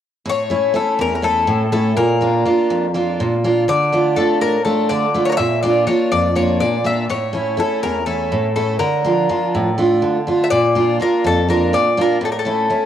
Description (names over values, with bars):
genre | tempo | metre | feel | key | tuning
greek folk, Greek bouzouki band | 246 BPM (eighths) | 7/8 | straight | unclear | A4 = 440 Hz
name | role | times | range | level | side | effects
Greek bouzouki | melody | 0.3-12.9 s | A4 to E5 | -19 LUFS | left 5 dB | none
picked steel-string acoustic guitar | accompaniment | 0.3-12.9 s | E2 to F4 | -16 LUFS | right 2 dB | cassette tape
room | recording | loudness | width
moderate lush hall reverb, RT60 2.1 s | home recording on cassette | -15 LUFS | side -10 dB against mid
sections
0.3-12.9 A section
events
none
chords
0.3 A; 2.0 Bb; 3.7 Dm; 5.4 Bb; 7.1 A; 8.8 Dm; 10.5 Bb; 12.2 A